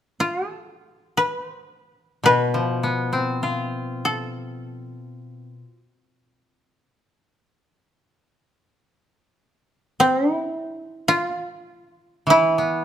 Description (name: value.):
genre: japanese traditional, Japanese chamber music.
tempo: free time.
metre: none.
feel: none.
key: unclear.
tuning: A4 = 436 Hz.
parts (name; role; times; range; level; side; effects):
koto; melody; 0.2-12.8 s; E4 to C5; -19 LUFS; equal; none.
koto; accompaniment; 2.2-12.8 s; B2 to F4; -23 LUFS; left 1 dB; none.
room: moderate recital hall reverb, RT60 1.5 s.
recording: close, detailed microphones.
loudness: -20 LUFS.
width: side -10 dB against mid.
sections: 0.0-12.8 A section.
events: none.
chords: none.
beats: free time.